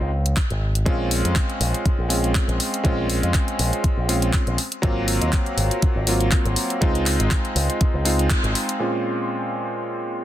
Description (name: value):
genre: nu-disco, nu disco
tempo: 121 BPM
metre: 4/4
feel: swing 55% on 16ths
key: Bb minor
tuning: A4 = 440 Hz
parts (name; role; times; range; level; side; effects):
- warm electric grand piano; accompaniment; 0.0-10.2 s; Bb2 to F4; -24 LUFS; equal; ping-pong delay
- picked electric bass with an envelope filter; bass; 0.0-8.5 s; Ab1 to F2; -22 LUFS; equal; sidechain pumping
- pop drum kit; drums; 0.3-8.8 s; handclaps, hi-hat; -26 LUFS; left 1 dB; overdrive
- electronic kick drum; drums; 0.4-8.4 s; none; -21 LUFS; equal; overdrive
room: light reverb, digital ambience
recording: dense, heavily limited modern master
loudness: -19 LUFS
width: side -12 dB against mid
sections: 0.0-8.8 A section; 8.8-10.2 B section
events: band accent 8.3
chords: 0.0 Db5; 0.9 Bbm9; 4.6 Ab13; 6.8 Dbmaj9; 8.8 Bbm9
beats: 0.37 | 0.87 1.36 1.86 2.35 | 2.85 3.35 3.84 4.34 | 4.83 5.33 5.83 6.32 | 6.82 7.31 7.81 8.30 | 8.80 9.30 9.79